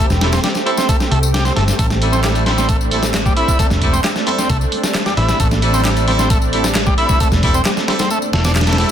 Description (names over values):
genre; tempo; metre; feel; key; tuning
breakbeat, breaks; 133 BPM; 4/4; straight; A minor; A4 = 440 Hz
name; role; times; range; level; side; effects
lush unison pad; sustained chords; 0.0-8.9 s; A3 to G4; -22 LUFS; right 1 dB; chorus, sidechain pumping
overdriven combo organ; riff; 0.0-8.9 s; G3 to G4; -21 LUFS; equal; dub echo
hollow-body short-scale fingered electric bass; bass; 0.1-8.8 s; E1 to C2; -18 LUFS; equal; none
dusty soul sampler-style drum kit; drums; 0.1-8.9 s; hi-hat, kick drum, snare drum; -17 LUFS; equal; none
electronic tambourine and handclaps; drums; 0.1-8.9 s; none; -26 LUFS; left 3 dB; none
bright horn section; stabs; 0.2-8.9 s; G3 to A4; -22 LUFS; right 2 dB; low-pass filter, dub echo
congas; percussion; 1.9-8.8 s; none; -29 LUFS; right 3 dB; none
room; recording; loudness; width
light reverb; dense, heavily limited modern master; -13 LUFS; side -9 dB against mid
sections
0.0-8.9 A section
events
kick drops out 8.1-8.9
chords
0.0 Am7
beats
0.44 0.89 1.34 | 1.79 2.24 2.69 3.14 | 3.59 4.04 4.50 4.95 | 5.40 5.85 6.30 6.75 | 7.20 7.65 8.11 8.56